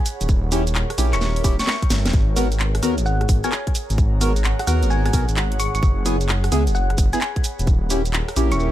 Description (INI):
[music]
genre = UK garage, two-step garage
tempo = 130 BPM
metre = 4/4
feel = swing 66% on 16ths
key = G# minor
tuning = A4 = 440 Hz
[part]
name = warbly tape-like pad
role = texture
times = 0.0-8.7 s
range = G#4 to B5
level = -31 LUFS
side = equal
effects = chorus, built-in reverb, sidechain pumping
[part]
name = garage drum kit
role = drums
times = 0.1-8.7 s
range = handclaps, hi-hat, rim click, shaker, snare drum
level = -26 LUFS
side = right 1 dB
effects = small room ambience
[part]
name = dark detuned saw bass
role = bass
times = 0.2-8.7 s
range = D#1 to D#2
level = -20 LUFS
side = equal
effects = none
[part]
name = electronic kick drum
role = drums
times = 0.3-7.8 s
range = none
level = -18 LUFS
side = equal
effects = small room ambience
[part]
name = percussive organ stab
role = stabs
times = 0.5-8.7 s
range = B3 to A#4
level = -25 LUFS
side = equal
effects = lush chorus, cassette tape, ping-pong delay
[part]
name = thumb-piano-like synth pluck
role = melody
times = 1.1-8.6 s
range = F#5 to C#6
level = -28 LUFS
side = left 1 dB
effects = chorus, ping-pong delay
[sound]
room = little or no reverb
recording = none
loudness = -17 LUFS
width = side -13 dB against mid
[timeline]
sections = 0.0-8.7 A section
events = drum fill 1.2-2.1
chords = 0.3 D#7b9; 2.1 G#m9; 5.8 F#9sus4; 7.7 D#7b9